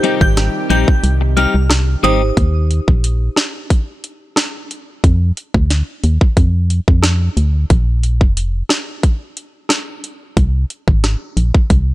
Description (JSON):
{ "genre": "dancehall", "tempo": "90 BPM", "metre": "4/4", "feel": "straight", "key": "unclear", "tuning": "A4 = 440 Hz", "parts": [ { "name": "marimba with medium mallets", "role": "accompaniment", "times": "0.0-2.2 s", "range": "Eb4 to C5", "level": "-24 LUFS", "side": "right 3 dB", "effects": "none" }, { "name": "lush unison pad", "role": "sustained chords", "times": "0.0-2.3 s", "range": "C3 to G4", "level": "-25 LUFS", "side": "equal", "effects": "chorus, sidechain pumping" }, { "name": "clean electric guitar", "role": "arpeggios", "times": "0.0-2.2 s", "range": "G3 to G4", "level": "-19 LUFS", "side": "left 9 dB", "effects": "none" }, { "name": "island pop drum kit", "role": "drums", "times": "0.0-11.9 s", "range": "hi-hat, kick drum, rim click, snare drum", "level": "-14 LUFS", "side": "equal", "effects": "overdrive, vintage 12-bit sampler grit" }, { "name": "glassy synth bell", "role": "melody", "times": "0.2-2.2 s", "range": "Eb6 to G6", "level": "-21 LUFS", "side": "right 2 dB", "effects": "chorus, tremolo, ping-pong delay" }, { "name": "organ-like FM bass", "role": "bass", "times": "0.2-11.9 s", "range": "F1 to F2", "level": "-14 LUFS", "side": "equal", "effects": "none" } ], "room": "digital ambience", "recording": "none", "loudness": "-13 LUFS", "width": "side -17 dB against mid", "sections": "0.0-2.4 A section; 2.4-11.9 B section", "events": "kick muted 1.0-2.4", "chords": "0.0 Cm; 2.4 Eb5; 5.0 Dm; 7.7 Bb5; 10.4 Ab", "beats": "0.37 1.04 1.70 | 2.37 3.04 3.70 4.37 | 5.04 5.70 6.37 7.04 | 7.70 8.37 9.04 9.70 | 10.37 11.04 11.70" }